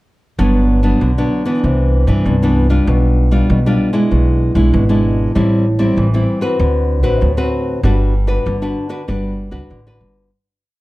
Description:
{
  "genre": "samba and choro",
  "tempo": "97 BPM",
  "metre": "4/4",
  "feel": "straight",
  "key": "G major",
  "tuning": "A4 = 440 Hz",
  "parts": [
    { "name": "nylon-string guitar", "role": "accompaniment", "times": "0.4-10.3 s", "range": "G2 to B4", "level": "-16 LUFS", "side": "left 1 dB", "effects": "none" },
    { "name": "upright bass", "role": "bass", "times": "0.4-10.3 s", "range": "G1 to G2", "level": "-15 LUFS", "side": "equal", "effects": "none" }
  ],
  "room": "light reverb",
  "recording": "dark, warm production",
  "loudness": "-12 LUFS",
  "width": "side -19 dB against mid",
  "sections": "0.4-10.3 A section",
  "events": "fade-out 7.8-10.3",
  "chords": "0.4 Gmaj7; 1.6 Cmaj9; 2.9 G7/B; 4.1 E7/B; 5.4 Am7; 6.6 D6; 7.8 Gmaj7"
}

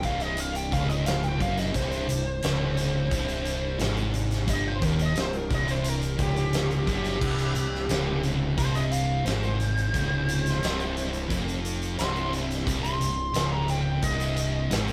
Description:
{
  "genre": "stoner and doom metal",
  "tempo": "88 BPM",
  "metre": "4/4",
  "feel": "straight",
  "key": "C minor",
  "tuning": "A4 = 444 Hz",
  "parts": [
    { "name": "fuzz lead guitar", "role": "melody", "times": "0.0-14.7 s", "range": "G4 to C6", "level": "-34 LUFS", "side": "equal", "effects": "wah, distortion" },
    { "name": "string machine, violins", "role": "sustained chords", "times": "0.0-14.9 s", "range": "C3 to G4", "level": "-41 LUFS", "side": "equal", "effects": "none" },
    { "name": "thick fuzz guitar", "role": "riff", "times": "0.0-14.9 s", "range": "C2 to Ab2", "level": "-33 LUFS", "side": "equal", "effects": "distortion" },
    { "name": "growling picked electric bass", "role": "bass", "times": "0.0-14.9 s", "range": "C1 to Ab1", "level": "-35 LUFS", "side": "equal", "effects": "overdrive" },
    { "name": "big rock drum kit", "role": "drums", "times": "0.0-14.9 s", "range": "crash cymbal, hi-hat, kick drum, snare drum", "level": "-33 LUFS", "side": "equal", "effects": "none" },
    { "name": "thick fuzz guitar", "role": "riff", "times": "0.1-14.9 s", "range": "C2 to Ab2", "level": "-33 LUFS", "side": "equal", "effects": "distortion" }
  ],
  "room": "moderate studio reverb, RT60 0.7 s",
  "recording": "band playing live in one room",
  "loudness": "-27 LUFS",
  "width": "mono",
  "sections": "0.0-14.9 A section",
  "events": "lead electric guitar solo 0.0-14.9",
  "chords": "0.0 C5"
}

